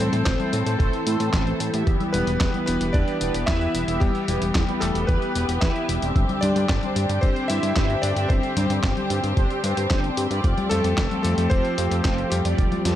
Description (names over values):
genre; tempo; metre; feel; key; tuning
italo disco; 112 BPM; 4/4; straight; unclear; A4 = 440 Hz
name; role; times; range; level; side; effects
bright electric grand piano; melody; 0.0-13.0 s; G3 to E5; -28 LUFS; left 1 dB; vintage 12-bit sampler grit, ping-pong delay
dark studio string section; sustained chords; 0.0-13.0 s; D3 to A4; -28 LUFS; left 2 dB; none
mellow synth brass; stabs; 0.0-13.0 s; B3 to E5; -29 LUFS; right 3 dB; chorus, phaser, cassette tape
fat analog bass; bass; 0.0-13.0 s; E1 to A2; -26 LUFS; equal; none
dusty soul sampler-style drum kit; drums; 0.0-13.0 s; congas, handclaps, hi-hat, snare drum; -27 LUFS; left 2 dB; studio ambience
electronic kick drum; drums; 0.3-12.7 s; none; -22 LUFS; equal; studio ambience
room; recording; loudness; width
light reverb; dark, warm production; -20 LUFS; side -12 dB against mid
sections
0.0-13.0 A section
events
none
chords
0.0 Am; 1.9 Em; 6.2 Gsus4; 10.4 Fadd9